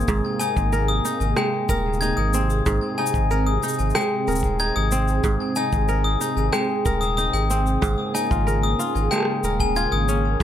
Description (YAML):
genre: folktronica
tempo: 93 BPM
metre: 4/4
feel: straight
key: Ab major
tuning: A4 = 441 Hz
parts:
  - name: warm analog pad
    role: sustained chords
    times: 0.0-10.4 s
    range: C3 to Ab4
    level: -27 LUFS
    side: right 2 dB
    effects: chorus
  - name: kora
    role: arpeggios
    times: 0.0-10.4 s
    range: Ab2 to Bb4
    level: -26 LUFS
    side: right 2 dB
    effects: ping-pong delay
  - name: warm sub bass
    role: bass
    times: 0.0-10.4 s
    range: Eb1 to Ab1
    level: -23 LUFS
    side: equal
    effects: none
  - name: electronic shaker and rim click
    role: drums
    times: 0.0-10.4 s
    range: none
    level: -30 LUFS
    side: equal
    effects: overdrive
  - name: kick drum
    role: drums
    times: 0.1-10.4 s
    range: none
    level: -25 LUFS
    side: equal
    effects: none
  - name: glockenspiel with brass mallets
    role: second line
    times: 0.4-10.1 s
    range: G5 to Ab6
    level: -25 LUFS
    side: left 7 dB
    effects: digital delay
room: light reverb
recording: none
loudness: -19 LUFS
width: side -10 dB against mid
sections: 0.0-10.4 A section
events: none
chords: 0.0 Abadd9; 7.8 Bbm7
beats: | 0.08 0.73 1.37 2.02 | 2.66 3.31 3.95 4.60 | 5.24 5.89 6.53 7.18 | 7.82 8.47 9.11 9.76 | 10.40